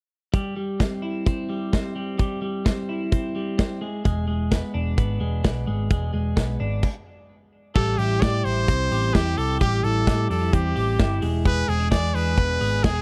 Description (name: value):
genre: jangly indie pop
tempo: 130 BPM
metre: 4/4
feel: straight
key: C major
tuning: A4 = 440 Hz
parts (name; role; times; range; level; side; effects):
- twelve-string electric guitar; arpeggios; 0.3-13.0 s; G3 to G#4; -30 LUFS; equal; spring reverb
- big rock drum kit; drums; 0.3-12.9 s; crash cymbal, hi-hat, kick drum, snare drum; -24 LUFS; equal; none
- hollow-body short-scale picked electric bass; bass; 4.1-13.0 s; E1 to A2; -27 LUFS; equal; none
- brilliant trumpet; melody; 7.8-13.0 s; G4 to D5; -28 LUFS; equal; none
room: little or no reverb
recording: dry, close 1970s-style studio recording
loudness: -23 LUFS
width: mono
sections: 0.3-7.8 A section; 7.8-13.0 B section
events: stop 6.8-7.8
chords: 0.3 C/G; 3.8 E7; 7.8 Am7; 11.2 E7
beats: | 0.34 0.80 1.27 1.73 | 2.20 2.66 3.12 3.59 | 4.05 4.52 4.98 5.44 | 5.91 6.37 6.83 7.30 | 7.76 8.22 8.68 9.15 | 9.61 10.07 10.53 10.99 | 11.46 11.92 12.38 12.84